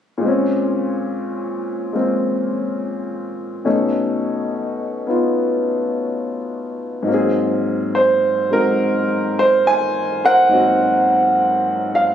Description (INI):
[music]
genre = solo jazz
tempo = 70 BPM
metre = 4/4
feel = swing 66% on 8ths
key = Ab mixolydian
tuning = A4 = 439 Hz
[part]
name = warm upright piano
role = solo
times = 0.2-12.1 s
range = Ab2 to Ab5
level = -16 LUFS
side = equal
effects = none
[sound]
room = light reverb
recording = recorded on a phone in the room, studio reverb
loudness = -16 LUFS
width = side -9 dB against mid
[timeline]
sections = 0.2-7.1 A section; 7.1-12.1 B section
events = none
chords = 0.2 Bbm9; 3.7 B9; 7.1 Ab9